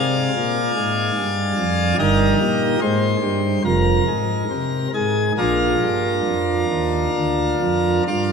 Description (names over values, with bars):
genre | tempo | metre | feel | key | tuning
classical, chorale-style piece for pipe organ | 64-73 BPM | 4/4 | rubato | unclear | A4 = 445 Hz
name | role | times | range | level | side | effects
pipe organ, plenum | solo | 0.0-8.3 s | F1 to Ab5 | -17 LUFS | equal | none
room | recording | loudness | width
wet church reverb, RT60 3.0 s | none | -17 LUFS | side -6 dB against mid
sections
0.0-8.3 A section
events
none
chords
0.0 Bb7; 2.0 Eb/G; 3.6 Fm; 5.4 Bb